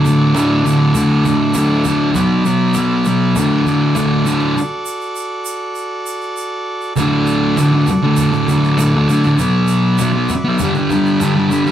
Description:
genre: garage rock duo or trio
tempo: 100 BPM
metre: 4/4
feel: straight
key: D major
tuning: A4 = 437 Hz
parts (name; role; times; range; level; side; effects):
- combo organ; sustained chords; 0.0-11.7 s; F#4 to B5; -22 LUFS; right 1 dB; spring reverb
- thick fuzz guitar; riff; 0.0-11.7 s; D2 to B3; -12 LUFS; equal; distortion
- egg shaker; percussion; 0.1-11.7 s; none; -32 LUFS; right 5 dB; none
- cajon; drums; 0.3-11.3 s; none; -29 LUFS; equal; none
room: wet studio reverb, RT60 0.7 s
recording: band playing live in one room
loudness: -13 LUFS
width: side -10 dB against mid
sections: 0.0-4.6 A section; 4.6-7.0 B section; 7.0-11.7 C section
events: drum fill 4.3-4.6; break 4.6-7.0; transistor combo organ fill 10.0-11.7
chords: 0.0 D; 2.2 Bm; 3.4 D; 9.4 Bm; 10.6 G

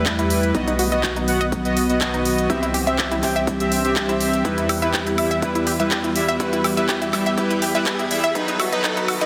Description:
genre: progressive house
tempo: 123 BPM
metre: 4/4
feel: straight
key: E harmonic minor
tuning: A4 = 440 Hz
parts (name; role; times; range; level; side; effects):
- airy breathy pad; sustained chords; 0.0-9.3 s; D#3 to G4; -28 LUFS; equal; chorus, sidechain pumping
- soft supersaw; stabs; 0.0-9.3 s; F#3 to G5; -24 LUFS; equal; sidechain pumping, low-pass filter, digital delay
- saturated sub bass; bass; 0.0-9.3 s; B1 to E2; -33 LUFS; equal; sidechain pumping
- riser; sound effects; 1.1-9.3 s; none; -36 LUFS; equal; none
- electronic kick drum; drums; 0.1-8.9 s; none; -31 LUFS; equal; high-pass filter on kick, studio reverb
- house drum kit; drums; 0.1-9.3 s; handclaps, hi-hat, woodblock; -28 LUFS; equal; sidechain pumping on hats, studio reverb, sidechain pumping on perc
- unison pluck; arpeggios; 0.2-9.3 s; D#4 to E5; -28 LUFS; equal; sidechain pumping, digital delay
room: moderate huge ambient reverb, RT60 6.7 s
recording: dense, heavily limited modern master, high-pass filter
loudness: -20 LUFS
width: mono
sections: 0.0-9.3 A section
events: build-up 0.0-9.3; filter sweep on supersaw synth 0.0-9.3; filter sweep on analog synth pad 0.0-9.3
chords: 0.0 Em; 0.5 B; 2.5 C; 4.4 Em; 8.4 B

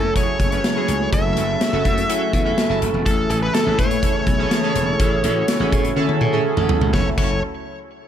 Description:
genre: 1980s-style pop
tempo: 124 BPM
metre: 4/4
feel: straight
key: F# minor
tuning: A4 = 440 Hz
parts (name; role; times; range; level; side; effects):
- fuzz lead guitar; melody; 0.0-7.4 s; A4 to E5; -24 LUFS; equal; distortion, digital delay
- chorused retro synth keys; accompaniment; 0.0-7.4 s; C#4 to G#5; -24 LUFS; right 2 dB; none
- lush unison pad; sustained chords; 0.0-7.2 s; C#3 to F#4; -27 LUFS; left 1 dB; chorus, phaser
- glassy slap bass; bass; 0.0-7.4 s; E1 to A2; -24 LUFS; equal; none
- big rock drum kit; drums; 0.2-7.3 s; crash cymbal, hi-hat, kick drum, snare drum, tambourine, toms; -21 LUFS; equal; gated reverb
- mellow synth brass; stabs; 5.7-7.4 s; F#3 to A4; -28 LUFS; right 1 dB; chorus, digital delay
room: light reverb, small room ambience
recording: none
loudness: -16 LUFS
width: side -9 dB against mid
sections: 0.0-6.9 A section; 6.9-8.1 B section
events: band accent 5.0-6.9; drum fill 6.0-6.9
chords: 0.0 F#m7

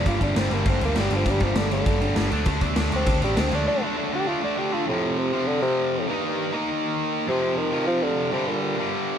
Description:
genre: punk rock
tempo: 200 BPM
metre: 4/4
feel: straight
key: G minor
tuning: A4 = 437 Hz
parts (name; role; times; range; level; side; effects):
- mellow bassoon; melody; 0.0-8.9 s; G2 to G4; -26 LUFS; equal; tape echo
- overdriven electric guitar; riff; 0.0-9.2 s; F2 to Eb4; -25 LUFS; equal; none
- overdriven picked electric bass; bass; 0.0-3.6 s; G1 to D2; -26 LUFS; equal; none
- raw garage drum kit; drums; 0.1-3.6 s; crash cymbal, kick drum, snare drum; -25 LUFS; equal; none
room: light reverb, studio ambience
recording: none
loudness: -21 LUFS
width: side -8 dB against mid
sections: 0.0-4.9 A section; 4.9-9.2 B section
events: bassoon solo 0.0-4.9; break 3.7-4.9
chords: 0.1 G5; 2.3 D5; 4.9 F; 6.1 Eb; 7.3 F5; 8.3 Gm

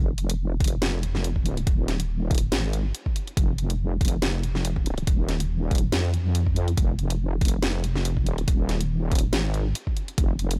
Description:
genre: deep dubstep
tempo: 141 BPM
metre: 4/4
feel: swing 55% on 16ths, half-time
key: F minor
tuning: A4 = 440 Hz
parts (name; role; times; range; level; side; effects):
- wobble bass; bass; 0.0-10.6 s; Eb1 to F2; -28 LUFS; equal; chorus
- garage drum kit; drums; 0.2-10.6 s; hi-hat, snare drum; -32 LUFS; equal; none
- electronic kick drum; drums; 0.6-10.3 s; none; -26 LUFS; equal; none
room: little or no reverb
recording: none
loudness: -25 LUFS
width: mono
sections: 0.0-10.6 A section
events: none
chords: none

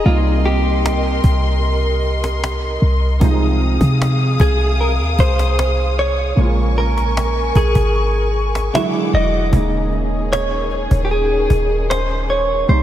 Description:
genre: contemporary R&B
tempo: 76 BPM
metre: 4/4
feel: straight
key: unclear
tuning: A4 = 440 Hz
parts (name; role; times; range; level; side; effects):
- direct-recorded clean electric guitar; melody; 0.0-12.8 s; F4 to E5; -21 LUFS; equal; lush chorus, diffuse ambient delay
- felt-muted upright piano; accompaniment; 0.0-12.8 s; C3 to F4; -24 LUFS; right 3 dB; ensemble chorus
- dark studio string section; sustained chords; 0.0-12.8 s; C3 to Eb6; -24 LUFS; left 2 dB; none
- warm 808-style bass; bass; 0.1-12.8 s; Eb1 to C3; -17 LUFS; equal; none
- cajon; drums; 0.1-12.8 s; none; -25 LUFS; equal; none
room: moderate lush hall reverb, RT60 2.7 s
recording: dreamy mix soaked in reverb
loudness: -14 LUFS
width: side -12 dB against mid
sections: 0.0-9.5 A section; 9.5-12.8 B section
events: none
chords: 0.1 Cm7; 3.2 Fm7/C; 6.4 Bbm7; 8.7 E9; 9.5 Eb7sus4

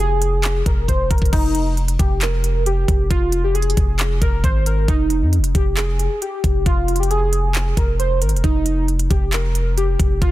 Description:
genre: hip hop, trap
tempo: 135 BPM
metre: 4/4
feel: half-time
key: F minor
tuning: A4 = 439 Hz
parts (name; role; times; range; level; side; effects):
- warbly lo-fi synth keys; melody; 0.0-10.3 s; Eb4 to C5; -22 LUFS; equal; chorus, phaser, ping-pong delay
- long sustained 808-style bass; bass; 0.0-10.3 s; F1 to F2; -19 LUFS; equal; none
- trap drum kit; drums; 0.0-10.3 s; crash cymbal, handclaps, hi-hat, kick drum; -20 LUFS; equal; none
room: little or no reverb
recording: dense, heavily limited modern master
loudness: -16 LUFS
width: side -16 dB against mid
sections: 0.0-1.3 A section; 1.3-10.3 A section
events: drum fill 0.9-1.3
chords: 0.0 N.C.; 3.1 Fmadd11; 4.9 Fm7; 6.7 Fmadd11; 8.4 Eb/F

